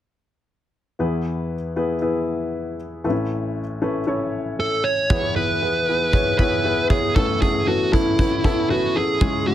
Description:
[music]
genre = piano-driven pop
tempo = 117 BPM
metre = 4/4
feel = straight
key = E major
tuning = A4 = 440 Hz
[part]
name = warm upright piano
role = accompaniment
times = 1.0-9.5 s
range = A1 to C#5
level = -22 LUFS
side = left 2 dB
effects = none
[part]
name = dark smooth lead guitar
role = melody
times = 4.6-9.5 s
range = E4 to C#5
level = -21 LUFS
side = right 2 dB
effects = overdrive
[part]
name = kick drum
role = drums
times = 5.1-9.3 s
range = none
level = -22 LUFS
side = right 1 dB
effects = none
[sound]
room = light reverb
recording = none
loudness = -19 LUFS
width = side -12 dB against mid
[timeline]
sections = 1.0-5.1 A section; 5.1-9.5 B section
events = none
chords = 1.0 E; 3.0 Aadd9; 5.1 E; 7.2 Aadd9

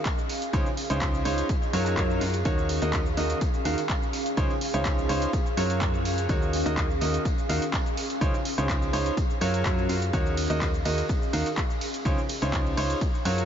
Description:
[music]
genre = piano house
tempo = 125 BPM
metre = 4/4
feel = straight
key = Eb dorian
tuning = A4 = 436 Hz
[part]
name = tambourine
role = percussion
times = 0.0-13.5 s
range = none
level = -44 LUFS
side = right 3 dB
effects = none
[part]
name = ethereal airy pad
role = texture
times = 0.0-13.5 s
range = Db4 to F5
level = -33 LUFS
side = equal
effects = ensemble chorus, built-in reverb, sidechain pumping
[part]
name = electronic kick drum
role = drums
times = 0.1-13.1 s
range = none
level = -28 LUFS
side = equal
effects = none
[part]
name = punchy analog drum machine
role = drums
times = 0.1-13.5 s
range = handclaps, hi-hat, ride cymbal, shaker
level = -34 LUFS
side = equal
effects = none
[part]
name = clear grand piano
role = riff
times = 0.5-13.5 s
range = Db3 to F5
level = -29 LUFS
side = right 1 dB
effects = sidechain pumping, ping-pong delay
[part]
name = solid FM bass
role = bass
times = 0.5-13.5 s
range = Db2 to Gb2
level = -29 LUFS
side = equal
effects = tube saturation, sidechain pumping
[part]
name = swell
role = sound effects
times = 1.6-2.5 s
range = none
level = -40 LUFS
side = left 3 dB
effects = none
[sound]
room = light reverb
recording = nothing above 7.5 kHz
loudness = -24 LUFS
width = side -9 dB against mid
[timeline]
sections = 0.0-13.5 A section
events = swell 1.6-2.5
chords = 0.0 N.C.; 0.5 Dbmaj9; 1.5 Gbmaj7; 2.5 Ebm7; 4.4 Dbmaj9; 5.3 Gbmaj7; 6.3 Ebm7; 8.2 Dbmaj9; 9.2 Gbmaj7; 10.1 Ebm7; 12.1 Dbmaj9

